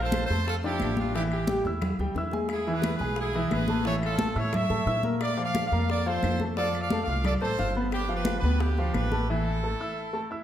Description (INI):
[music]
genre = latin, salsa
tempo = 177 BPM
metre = 4/4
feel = straight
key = unclear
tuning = A4 = 440 Hz
[part]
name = brilliant horn section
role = melody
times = 0.0-10.3 s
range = D4 to F5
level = -31 LUFS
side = right 1 dB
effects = none
[part]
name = clear baby grand piano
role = accompaniment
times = 0.0-10.4 s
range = E3 to F6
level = -30 LUFS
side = equal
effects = none
[part]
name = upright bass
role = bass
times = 0.0-9.7 s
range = G1 to Bb2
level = -30 LUFS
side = equal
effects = none
[part]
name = bongos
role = percussion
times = 0.1-9.3 s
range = none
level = -39 LUFS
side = left 4 dB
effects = none
[part]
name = claves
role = percussion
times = 0.1-9.1 s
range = none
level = -47 LUFS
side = left 6 dB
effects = none
[part]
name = congas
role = percussion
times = 0.1-9.3 s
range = none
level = -32 LUFS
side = left 1 dB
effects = none
[sound]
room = wet recital hall reverb, RT60 1.5 s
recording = none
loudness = -25 LUFS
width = side -10 dB against mid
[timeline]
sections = 0.0-10.4 A section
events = break 9.3-10.4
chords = 0.0 Bbmaj7; 1.1 A5; 2.5 E; 3.9 A; 5.2 Bb; 6.6 F6; 7.9 G7; 9.3 A5